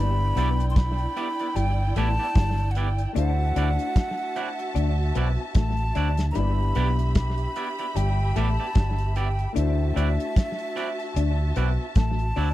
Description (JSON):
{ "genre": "lovers rock reggae", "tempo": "75 BPM", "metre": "4/4", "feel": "swing 57% on 16ths", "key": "unclear", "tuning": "A4 = 440 Hz", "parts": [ { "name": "breathy hollow jazz flute", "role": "melody", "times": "0.0-12.5 s", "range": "E5 to C6", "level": "-31 LUFS", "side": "right 1 dB", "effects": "tape echo" }, { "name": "warm studio string section", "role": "second line", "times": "0.0-12.5 s", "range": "E4 to B5", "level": "-35 LUFS", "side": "right 2 dB", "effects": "none" }, { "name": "warm concert grand piano", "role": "accompaniment", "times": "0.0-12.5 s", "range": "A3 to D5", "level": "-37 LUFS", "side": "left 6 dB", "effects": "none" }, { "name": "electric guitar through a small old amp", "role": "riff", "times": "0.0-12.5 s", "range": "G3 to D4", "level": "-33 LUFS", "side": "left 10 dB", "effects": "slapback echo" }, { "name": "vintage muted fingered electric bass", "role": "bass", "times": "0.0-12.5 s", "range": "G1 to D2", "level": "-23 LUFS", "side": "equal", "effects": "none" }, { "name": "twangy electric guitar", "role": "stabs", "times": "0.4-12.5 s", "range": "B3 to D5", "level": "-31 LUFS", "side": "right 6 dB", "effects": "none" }, { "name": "damped 70s drum kit", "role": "drums", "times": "0.4-12.5 s", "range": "hi-hat, kick drum, snare drum", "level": "-22 LUFS", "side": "equal", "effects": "slapback echo" } ], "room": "little or no reverb", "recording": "dry, close 1970s-style studio recording", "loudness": "-22 LUFS", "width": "side -15 dB against mid", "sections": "0.0-12.5 A section", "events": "none", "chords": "0.0 G6; 3.2 D9; 6.4 G6; 9.6 D9" }